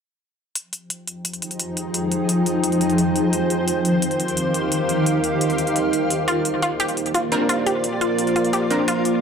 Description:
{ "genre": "dark technical drum and bass", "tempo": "173 BPM", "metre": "4/4", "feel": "straight", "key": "F minor", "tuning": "A4 = 441 Hz", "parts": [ { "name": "deep dark ambient pad", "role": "sustained chords", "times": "1.5-9.2 s", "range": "Bb3 to G5", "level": "-24 LUFS", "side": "right 2 dB", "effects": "chorus, built-in reverb" }, { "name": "electronic hi-hat", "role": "drums", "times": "0.6-9.1 s", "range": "none", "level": "-26 LUFS", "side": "left 1 dB", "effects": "none" }, { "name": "granular cloud pad", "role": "texture", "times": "1.2-9.2 s", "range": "Db3 to F5", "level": "-22 LUFS", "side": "left 1 dB", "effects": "built-in reverb" }, { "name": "wide unison pluck", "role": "arpeggios", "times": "6.3-9.0 s", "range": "F4 to G4", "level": "-23 LUFS", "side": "equal", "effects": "tape echo" }, { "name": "orchestra-hit-like synth stab", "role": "stabs", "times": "7.3-8.8 s", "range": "C4 to Bb4", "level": "-24 LUFS", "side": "left 1 dB", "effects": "built-in reverb, tape echo" } ], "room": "wet digital room reverb, RT60 0.9 s, digital ambience", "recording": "none", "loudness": "-19 LUFS", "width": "side -6 dB against mid", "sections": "0.6-9.2 A section", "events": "none", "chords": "0.6 Fm; 3.3 Ebadd9; 6.1 Bbadd9" }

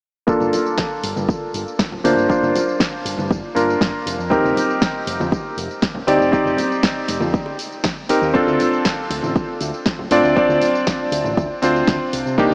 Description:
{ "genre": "nu-disco, nu disco", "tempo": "119 BPM", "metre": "4/4", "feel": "straight", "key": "G minor", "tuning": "A4 = 440 Hz", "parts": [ { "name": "bright electric grand piano", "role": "accompaniment", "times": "0.3-12.5 s", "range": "Bb3 to D5", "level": "-20 LUFS", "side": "equal", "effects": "low-pass filter, analog delay" }, { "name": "picked electric bass with an envelope filter", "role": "bass", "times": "0.3-12.5 s", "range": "F1 to C3", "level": "-29 LUFS", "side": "equal", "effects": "tube saturation" }, { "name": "electronic kick drum", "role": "drums", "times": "0.3-12.5 s", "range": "none", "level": "-24 LUFS", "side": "equal", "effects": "none" }, { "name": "house drum kit", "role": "drums", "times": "0.3-12.5 s", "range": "hi-hat, snare drum, tambourine", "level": "-28 LUFS", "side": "equal", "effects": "none" }, { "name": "congas and bongos", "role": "percussion", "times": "0.4-12.5 s", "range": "none", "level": "-32 LUFS", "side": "equal", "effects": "none" } ], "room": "moderate huge ambient reverb, RT60 5.2 s", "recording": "dreamy mix soaked in reverb, small speaker sound", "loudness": "-19 LUFS", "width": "mono", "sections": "0.3-12.5 A section", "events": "filter sweep on electric grand piano 0.3-12.5", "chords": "0.3 Gm7; 4.3 F9sus4; 8.3 Dm7" }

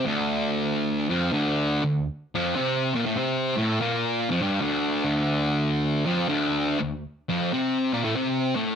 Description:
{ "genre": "metal", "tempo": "96 BPM", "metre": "4/4", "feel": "swing 64% on 8ths", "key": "D minor", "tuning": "A4 = 440 Hz", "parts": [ { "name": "fuzz guitar", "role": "solo", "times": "0.0-8.8 s", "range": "D2 to C4", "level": "-22 LUFS", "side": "equal", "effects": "distortion" } ], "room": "moderate large studio reverb, RT60 0.8 s", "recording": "none", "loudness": "-23 LUFS", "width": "side -7 dB against mid", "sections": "0.0-8.8 A section", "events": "none", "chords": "0.0 Dm" }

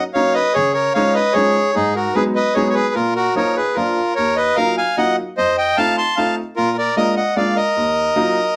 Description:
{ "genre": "musette waltz", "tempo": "150 BPM", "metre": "3/4", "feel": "straight", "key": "Eb minor", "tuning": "A4 = 440 Hz", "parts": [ { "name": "accordion", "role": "melody", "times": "0.0-8.6 s", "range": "Eb4 to C6", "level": "-18 LUFS", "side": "equal", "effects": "none" }, { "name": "clear upright piano", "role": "accompaniment", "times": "0.2-8.4 s", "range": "Eb2 to F4", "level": "-24 LUFS", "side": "equal", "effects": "none" } ], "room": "wet studio reverb, RT60 0.6 s", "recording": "none", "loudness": "-17 LUFS", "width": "mono", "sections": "0.0-8.6 A section", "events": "none", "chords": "0.0 Ebm7; 0.6 Dbadd9; 1.7 Abm7; 3.0 Bbsus4; 3.8 Bb; 4.2 Ebmadd9; 5.4 F7; 6.6 Bb7; 7.8 Ebmadd9" }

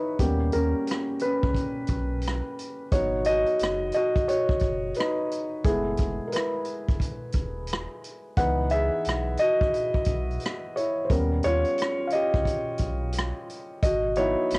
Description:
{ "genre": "lo-fi hip hop", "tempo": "88 BPM", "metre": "4/4", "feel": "swing 65% on 16ths", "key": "unclear", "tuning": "A4 = 439 Hz", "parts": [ { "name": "felt-muted upright piano", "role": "accompaniment", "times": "0.0-14.6 s", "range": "E3 to F#5", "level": "-25 LUFS", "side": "equal", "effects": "cassette tape, low-pass filter" }, { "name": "sub bass with octave", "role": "bass", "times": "0.2-14.6 s", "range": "D#1 to D#2", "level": "-29 LUFS", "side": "equal", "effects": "none" }, { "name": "vintage drum kit", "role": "drums", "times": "0.2-14.6 s", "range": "hi-hat, kick drum, rim click", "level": "-28 LUFS", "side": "equal", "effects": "vintage 12-bit sampler grit, cassette tape" } ], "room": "light reverb", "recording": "home recording on cassette", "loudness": "-23 LUFS", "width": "side -26 dB against mid", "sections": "0.0-14.6 A section", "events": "felt piano solo 0.0-14.6", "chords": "0.2 D#7b13; 2.9 G#m7; 5.6 F#m11; 8.4 C#m7; 11.1 D#7b13; 13.8 G#m7" }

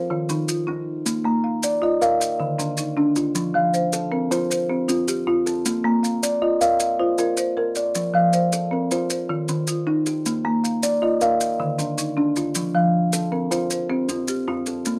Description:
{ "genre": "southern african traditional, mbira-style interlocking cycle", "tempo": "104 BPM (dotted quarters)", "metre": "12/8", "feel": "straight", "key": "F mixolydian", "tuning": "A4 = 438 Hz", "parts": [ { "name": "folk marimba with medium hard mallets", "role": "arpeggios", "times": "0.0-14.9 s", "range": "D3 to F5", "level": "-27 LUFS", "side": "equal", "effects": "none" }, { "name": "kalimba", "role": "arpeggios", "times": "0.0-15.0 s", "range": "D3 to Bb5", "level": "-24 LUFS", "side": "equal", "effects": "none" }, { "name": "maracas", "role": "percussion", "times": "0.3-15.0 s", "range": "none", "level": "-30 LUFS", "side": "equal", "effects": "none" } ], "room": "light reverb", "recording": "none", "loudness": "-22 LUFS", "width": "mono", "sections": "0.0-15.0 A section", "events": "none", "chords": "0.0 Eb5; 1.1 Bb; 2.2 Dm; 3.4 F; 5.7 Bb; 8.0 F; 9.1 Eb; 10.3 Bb; 11.4 Dm; 12.6 F" }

